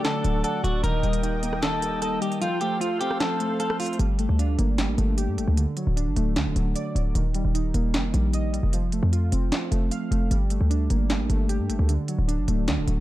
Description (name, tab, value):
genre	hip hop, trap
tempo	152 BPM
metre	4/4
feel	half-time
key	G minor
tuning	A4 = 440 Hz
part	clean electric guitar	melody	0.0-4.0 s	F4 to Bb4	-28 LUFS	equal	low-pass filter, digital delay
part	breathy flute-like synth lead	second line	0.0-3.6 s	D5 to A5	-35 LUFS	left 5 dB	chorus, digital delay
part	warbly lo-fi synth keys	accompaniment	0.0-13.0 s	D3 to F5	-28 LUFS	right 1 dB	chorus, low-pass filter
part	musette accordion	sustained chords	0.0-4.0 s	Bb3 to Eb6	-36 LUFS	right 3 dB	none
part	trap drum kit	drums	0.0-13.0 s	handclaps, hi-hat, rim click, snare drum	-30 LUFS	equal	none
part	short 808-style bass	bass	0.2-13.0 s	D1 to G2	-23 LUFS	equal	none
room	digital ambience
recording	dark, warm production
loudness	-22 LUFS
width	side -15 dB against mid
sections	0.0-4.0 A section; 4.0-13.0 B section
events	kick muted 2.4-4.0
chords	0.0 D; 0.8 Eb; 2.4 F; 4.0 Gmadd9; 5.6 D; 7.2 Eb; 8.7 F; 10.3 Gmadd9; 11.9 D